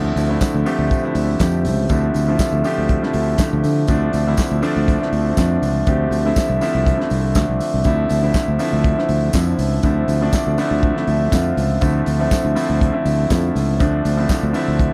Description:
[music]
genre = disco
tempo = 121 BPM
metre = 4/4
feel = straight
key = D minor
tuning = A4 = 439 Hz
[part]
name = warm concert grand piano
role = accompaniment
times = 0.0-14.9 s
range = D3 to G4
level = -23 LUFS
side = equal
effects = none
[part]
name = mellow French horn section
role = sustained chords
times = 0.0-14.9 s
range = F3 to E5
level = -28 LUFS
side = equal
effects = none
[part]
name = overdriven fingered electric bass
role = bass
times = 0.0-14.9 s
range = C2 to D3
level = -21 LUFS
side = equal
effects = none
[part]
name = warm soul drum kit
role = drums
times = 0.2-14.9 s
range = handclaps, hi-hat, kick drum, snare drum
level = -24 LUFS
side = equal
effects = none
[part]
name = tambourine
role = percussion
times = 0.2-14.7 s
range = none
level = -39 LUFS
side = equal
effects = none
[sound]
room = little or no reverb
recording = none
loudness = -18 LUFS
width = mono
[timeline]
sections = 0.0-14.9 A section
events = none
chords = 0.0 Dm9

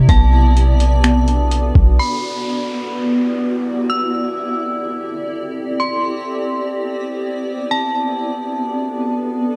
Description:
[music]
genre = hip hop, atmospheric cloud-rap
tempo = 126 BPM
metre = 4/4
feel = half-time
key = E minor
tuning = A4 = 439 Hz
[part]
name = granular cloud pad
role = sustained chords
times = 0.0-9.6 s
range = B3 to D5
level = -23 LUFS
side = equal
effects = built-in reverb, sidechain pumping
[part]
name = warbly dusty pluck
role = arpeggios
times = 0.0-2.0 s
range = B3 to D4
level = -25 LUFS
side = equal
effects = chorus, phaser, digital delay
[part]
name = warm 808-style bass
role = bass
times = 0.0-2.0 s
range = B1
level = -15 LUFS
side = equal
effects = none
[part]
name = dark detuned synth bell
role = melody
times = 0.1-9.6 s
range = A5 to E6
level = -25 LUFS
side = equal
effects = chorus, tremolo, digital delay
[part]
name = lo-fi sampler-style drum kit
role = drums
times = 0.1-1.9 s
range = finger snaps, hi-hat, kick drum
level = -17 LUFS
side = equal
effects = none
[part]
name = downlifter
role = sound effects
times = 2.0-5.8 s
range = none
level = -35 LUFS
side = equal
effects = none
[sound]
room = light reverb, digital ambience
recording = dark, warm production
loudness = -18 LUFS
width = mono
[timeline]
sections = 0.0-2.0 A section; 2.0-9.6 B section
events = none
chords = 0.1 Bm7; 2.0 Em9; 3.9 D9sus4; 5.8 Cmaj9; 7.7 Bm7

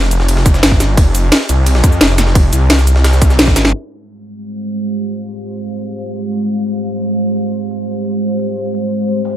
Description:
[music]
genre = dark technical drum and bass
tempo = 174 BPM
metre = 4/4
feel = straight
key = F minor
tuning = A4 = 444 Hz
[part]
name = wide detuned saw bass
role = bass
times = 0.0-3.7 s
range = F1 to F2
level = -12 LUFS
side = equal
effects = chorus, overdrive, sidechain pumping
[part]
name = jungle sampler-style drum kit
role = drums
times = 0.0-3.6, 9.2-9.3 s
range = hi-hat, snare drum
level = -22 LUFS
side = equal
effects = high-pass filter on hats, high-pass filter on snare, high-pass filter on room
[part]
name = drum and bass drum kit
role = drums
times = 0.1-9.1 s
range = hi-hat, ride cymbal, shaker, snare drum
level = -14 LUFS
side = equal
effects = overdrive
[part]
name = electronic kick drum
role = drums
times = 0.5-3.5 s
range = none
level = -10 LUFS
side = equal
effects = overdrive
[part]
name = deep dark ambient pad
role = sustained chords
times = 4.3-9.4 s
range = Ab3 to Bb5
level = -17 LUFS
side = right 1 dB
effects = chorus, built-in reverb, sidechain pumping
[sound]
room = little or no reverb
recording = low-pass filter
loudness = -11 LUFS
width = side -11 dB against mid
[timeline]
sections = 0.0-3.7 A section; 3.7-9.4 B section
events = drop 0.0-3.7; band accent 3.4; drum fill 3.6; filter sweep 3.7-9.4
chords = 0.0 F5; 3.7 Fmadd9

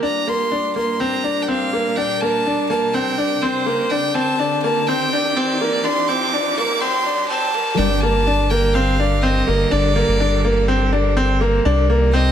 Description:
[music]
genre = piano and strings electronica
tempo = 124 BPM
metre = 4/4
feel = straight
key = G minor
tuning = A4 = 438 Hz
[part]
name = bright violin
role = melody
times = 0.0-12.3 s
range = C5 to D6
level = -22 LUFS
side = equal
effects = none
[part]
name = bright string quartet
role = sustained chords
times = 0.0-12.3 s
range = C3 to D5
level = -26 LUFS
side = right 3 dB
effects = low-pass filter
[part]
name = bright concert grand piano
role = riff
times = 0.0-12.3 s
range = Bb3 to D4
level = -19 LUFS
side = left 1 dB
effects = tape echo
[part]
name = riser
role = sound effects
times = 1.1-7.8 s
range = none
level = -29 LUFS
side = left 1 dB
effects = none
[part]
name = round analog bass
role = bass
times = 7.8-12.3 s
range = G1 to C2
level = -19 LUFS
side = equal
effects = tube saturation
[sound]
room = moderate lush hall reverb, RT60 2.1 s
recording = high-pass filter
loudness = -16 LUFS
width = side -9 dB against mid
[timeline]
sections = 0.0-7.8 A section; 7.8-12.3 B section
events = build-up 0.0-7.8; filter sweep on string quartet 0.0-7.8; riser 1.1-7.8; drop 7.8-12.3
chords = 0.0 Gm; 3.9 Cmadd9; 7.8 Gm; 11.7 Cmadd9

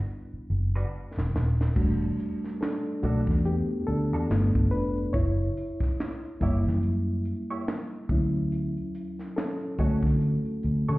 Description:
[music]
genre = R&B, neo-soul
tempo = 71 BPM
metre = 4/4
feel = swing 59% on 16ths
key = unclear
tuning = A4 = 440 Hz
[part]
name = bright reed electric piano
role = accompaniment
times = 0.0-11.0 s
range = F#3 to C#5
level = -30 LUFS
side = equal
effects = fast tremolo, plate reverb
[part]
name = vintage muted fingered electric bass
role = bass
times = 0.3-11.0 s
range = Eb1 to D3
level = -26 LUFS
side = equal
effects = none
[part]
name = hollow-body jazz guitar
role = second line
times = 0.8-11.0 s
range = G3 to C#5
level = -38 LUFS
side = right 3 dB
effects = wah, plate reverb
[part]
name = tight funk drum kit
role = drums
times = 1.2-11.0 s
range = crash cymbal, handclaps, hi-hat, kick drum, snare drum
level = -30 LUFS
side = equal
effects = none
[sound]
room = light reverb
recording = heard muffled through a wall, stone room reverb, EQ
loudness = -25 LUFS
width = side -20 dB against mid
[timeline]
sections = 0.0-1.8 A section; 1.8-11.0 B section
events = drum fill 0.1-1.8; reed electric piano solo 1.8-11.0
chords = 0.0 Em9; 1.8 Em11; 4.3 G9; 5.1 F#7b9; 8.1 Dmaj7

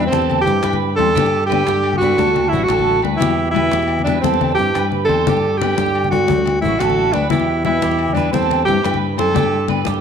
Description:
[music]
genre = highlife guitar band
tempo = 117 BPM (dotted quarters)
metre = 12/8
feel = straight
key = G major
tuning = A4 = 440 Hz
[part]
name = breathy alto saxophone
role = melody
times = 0.0-9.7 s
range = C4 to A4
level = -18 LUFS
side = equal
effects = tape echo
[part]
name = mellow trombone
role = second line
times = 0.0-9.7 s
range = G2 to E3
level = -28 LUFS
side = right 12 dB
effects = none
[part]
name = nylon-string guitar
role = accompaniment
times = 0.0-9.8 s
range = F#3 to G4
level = -25 LUFS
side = left 14 dB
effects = none
[part]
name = electric guitar at the edge of break-up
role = arpeggios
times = 0.0-10.0 s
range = F#4 to C5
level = -23 LUFS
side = right 12 dB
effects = analog chorus
[part]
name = fingered electric bass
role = bass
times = 0.0-10.0 s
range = A1 to G2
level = -23 LUFS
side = equal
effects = none
[part]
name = cajon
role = drums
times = 0.1-9.9 s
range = none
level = -27 LUFS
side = equal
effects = none
[part]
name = congas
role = percussion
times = 0.1-10.0 s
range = none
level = -24 LUFS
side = left 10 dB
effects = none
[part]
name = agogo bells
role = percussion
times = 0.3-9.9 s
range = none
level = -28 LUFS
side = left 11 dB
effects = none
[sound]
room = light reverb, small room ambience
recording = 1960s-style stereo with parts hard left and right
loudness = -14 LUFS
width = side -7 dB against mid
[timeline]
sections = 0.0-10.0 A section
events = drum fill 4.6-5.3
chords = 0.1 C/E; 1.2 G; 2.2 D; 3.2 Em; 4.2 C/E; 5.3 G; 6.3 D; 7.3 Em; 8.3 C/E; 9.4 G

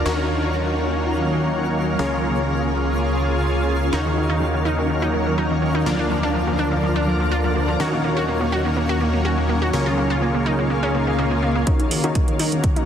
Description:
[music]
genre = progressive house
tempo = 124 BPM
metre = 4/4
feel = straight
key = Eb minor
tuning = A4 = 441 Hz
[part]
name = shimmering ambient pad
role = sustained chords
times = 0.0-12.9 s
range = Db3 to Bb4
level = -25 LUFS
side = right 1 dB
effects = chorus, built-in reverb, sidechain pumping
[part]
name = supersaw stab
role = stabs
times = 0.0-12.9 s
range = Db3 to D5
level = -24 LUFS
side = left 2 dB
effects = sidechain pumping, low-pass filter, tape echo
[part]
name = fat analog bass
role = bass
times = 0.0-12.7 s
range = Eb1 to Eb2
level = -24 LUFS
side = equal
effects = sidechain pumping, high-pass filter
[part]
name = downlifter and swell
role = sound effects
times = 0.0-0.1, 10.9-11.7 s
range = none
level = -33 LUFS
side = left 2 dB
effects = none
[part]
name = twinkling granular texture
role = texture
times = 0.0-11.7 s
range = F4 to F5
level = -33 LUFS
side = right 1 dB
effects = built-in reverb, sidechain pumping
[part]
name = wide unison pluck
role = arpeggios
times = 3.9-12.8 s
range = Eb3 to Gb4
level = -23 LUFS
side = equal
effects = sidechain pumping, tape echo
[part]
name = electronic hi-hat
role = drums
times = 11.7-12.9 s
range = none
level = -27 LUFS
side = right 4 dB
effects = small room reverb, sidechain pumping on hats
[part]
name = electronic kick drum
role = drums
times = 11.7-12.7 s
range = none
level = -19 LUFS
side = equal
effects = small room reverb
[sound]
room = moderate lush hall reverb, RT60 2.4 s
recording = dense, heavily limited modern master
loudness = -18 LUFS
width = side -8 dB against mid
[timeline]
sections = 0.0-11.7 A section; 11.7-12.9 B section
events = swell 10.9-11.7; build-up 11.7-12.9; filter sweep on synth pluck 11.7-12.9; filter sweep on supersaw synth 11.7-12.9; filter sweep 11.7-12.9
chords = 0.1 Ebm7; 2.0 Bbm7/Db; 3.9 Ebm7; 5.9 Bb/D; 7.8 Ebm7; 9.7 Bbm7/Db; 11.7 Ebm7

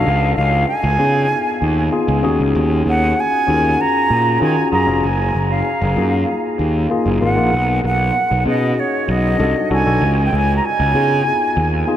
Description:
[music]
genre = polished 1980s jazz-funk pop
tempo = 96 BPM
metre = 4/4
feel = straight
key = F# major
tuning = A4 = 441 Hz
[part]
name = silver concert flute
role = melody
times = 0.0-11.9 s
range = C#5 to A#5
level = -18 LUFS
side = right 1 dB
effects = diffuse ambient delay
[part]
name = tine electric piano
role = accompaniment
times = 0.0-12.0 s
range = A#3 to A#4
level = -20 LUFS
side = left 3 dB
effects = wide subtle chorus
[part]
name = fuzz picked electric bass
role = bass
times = 0.0-11.8 s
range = E#1 to D#3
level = -18 LUFS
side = equal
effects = overdrive
[sound]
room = wet huge ambient reverb, RT60 8.7 s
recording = dreamy mix soaked in reverb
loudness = -14 LUFS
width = side -11 dB against mid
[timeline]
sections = 0.0-12.0 A section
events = none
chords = 0.1 C#9; 2.2 D#m11; 5.0 F#maj13; 7.5 B6; 9.4 Cdim7; 10.0 C#9

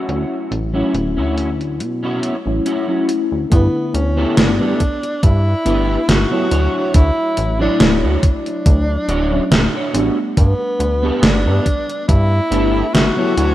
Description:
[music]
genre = vaporwave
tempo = 70 BPM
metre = 4/4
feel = swing 54% on 16ths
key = unclear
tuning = A4 = 440 Hz
[part]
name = mellow FM electric piano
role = accompaniment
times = 0.0-13.5 s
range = D3 to C#5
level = -21 LUFS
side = left 2 dB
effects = lush chorus, analog delay
[part]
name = electric guitar at the edge of break-up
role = riff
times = 0.0-13.5 s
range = B3 to C#5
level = -23 LUFS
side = right 2 dB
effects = ensemble chorus, vintage 12-bit sampler grit, analog delay
[part]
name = chorused synth bass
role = bass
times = 0.1-13.5 s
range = D1 to B2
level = -18 LUFS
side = equal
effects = tube saturation
[part]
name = gated 80s digital drum machine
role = drums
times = 0.1-13.5 s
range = hi-hat, snare drum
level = -17 LUFS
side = equal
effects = gated reverb, gated reverb snare, overdrive
[part]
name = breathy tenor saxophone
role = melody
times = 3.5-13.5 s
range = B3 to F#4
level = -21 LUFS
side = equal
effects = tape echo
[part]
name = electronic kick drum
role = drums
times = 3.5-12.3 s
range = none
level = -14 LUFS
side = equal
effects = overdrive
[sound]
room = moderate lush hall reverb, RT60 2.3 s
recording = rough home demo mix, cassette tape, low-pass filter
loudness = -14 LUFS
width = side -14 dB against mid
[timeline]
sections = 0.0-3.5 A section; 3.5-13.5 B section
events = none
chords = 0.0 Dmaj9; 3.5 G69; 6.5 Dmaj9; 10.4 G69

